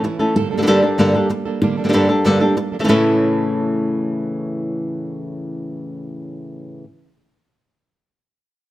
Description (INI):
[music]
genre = flamenco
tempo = 190 BPM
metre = 4/4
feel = straight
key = unclear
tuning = A4 = 442 Hz
[part]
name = flamenco guitar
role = melody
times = 0.0-6.8 s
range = G2 to A4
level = -17 LUFS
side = left 1 dB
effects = none
[part]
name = flamenco guitar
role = stabs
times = 0.0-6.8 s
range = G2 to A4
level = -25 LUFS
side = right 5 dB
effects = none
[sound]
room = moderate studio reverb, RT60 1.0 s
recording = none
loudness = -15 LUFS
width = side -15 dB against mid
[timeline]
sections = 0.0-2.9 A section; 2.9-5.4 B section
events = none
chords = 0.4 Gmadd9; 2.9 A